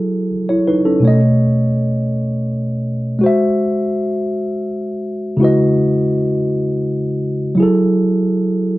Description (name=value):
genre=R&B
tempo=55 BPM (dotted quarters)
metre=6/8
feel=straight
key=F# dorian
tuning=A4 = 441 Hz
part: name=tine electric piano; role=solo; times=0.0-8.8 s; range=B2 to E5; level=-14 LUFS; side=equal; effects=none
room=moderate studio reverb, RT60 0.6 s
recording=band playing live in one room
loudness=-14 LUFS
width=side -18 dB against mid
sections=0.0-8.8 A section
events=none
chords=0.0 F#m9; 1.0 B9; 3.2 G#7b13; 5.4 C#m11; 7.6 F#m9